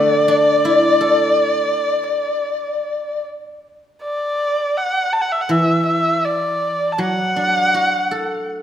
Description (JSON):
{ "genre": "chinese traditional, Chinese chamber ensemble", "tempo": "81 BPM", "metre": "4/4", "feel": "rubato", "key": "D gong mode", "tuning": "A4 = 441 Hz", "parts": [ { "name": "dark erhu", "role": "melody", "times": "0.0-8.5 s", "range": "D5 to A5", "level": "-18 LUFS", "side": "right 1 dB", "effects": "none" }, { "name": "mellow hollow large dizi", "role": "second line", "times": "0.0-3.2 s", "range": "D5", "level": "-19 LUFS", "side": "left 6 dB", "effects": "none" }, { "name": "pipa", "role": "second line", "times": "0.0-3.2 s", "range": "none", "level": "barely audible", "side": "none", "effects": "none" }, { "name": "guzheng", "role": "accompaniment", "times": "0.0-8.6 s", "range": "D3 to A4", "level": "-21 LUFS", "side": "right 1 dB", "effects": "none" } ], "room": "wet recital hall reverb, RT60 1.6 s", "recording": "none", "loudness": "-16 LUFS", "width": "side -10 dB against mid", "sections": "0.0-4.0 A section; 4.0-8.6 B section", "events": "none", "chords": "none", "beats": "0.28 | 1.00 1.74 2.48 3.24 | 4.00 4.76 5.51 6.25 | 6.99 7.73 8.47" }